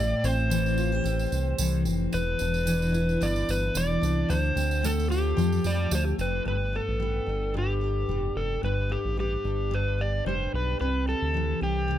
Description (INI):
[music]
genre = acoustic pop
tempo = 111 BPM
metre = 4/4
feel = swing 55% on 16ths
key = G mixolydian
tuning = A4 = 445 Hz
[part]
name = overdriven slide guitar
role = melody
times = 0.0-12.0 s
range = G4 to D5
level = -30 LUFS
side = left 1 dB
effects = plate reverb, tape echo
[part]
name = picked steel-string acoustic guitar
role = accompaniment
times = 0.0-12.0 s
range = E2 to G4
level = -29 LUFS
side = left 1 dB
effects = double-tracked left and right
[part]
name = round analog bass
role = bass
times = 0.0-12.0 s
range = E1 to F2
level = -28 LUFS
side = equal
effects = none
[part]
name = tambourine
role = percussion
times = 0.2-6.3 s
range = none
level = -38 LUFS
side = right 8 dB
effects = none
[sound]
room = light reverb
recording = none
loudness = -24 LUFS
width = side -11 dB against mid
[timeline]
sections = 0.0-6.5 A section; 6.5-12.0 B section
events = none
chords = 0.0 Am7; 2.1 Em7; 4.3 Dm7; 5.4 Fadd9; 6.5 G; 10.8 C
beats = 0.51 1.05 1.59 | 2.13 2.67 3.21 3.75 | 4.30 4.84 5.38 5.92 | 6.46 7.00 7.54 8.09 | 8.63 9.17 9.71 10.26 | 10.80 11.34 11.88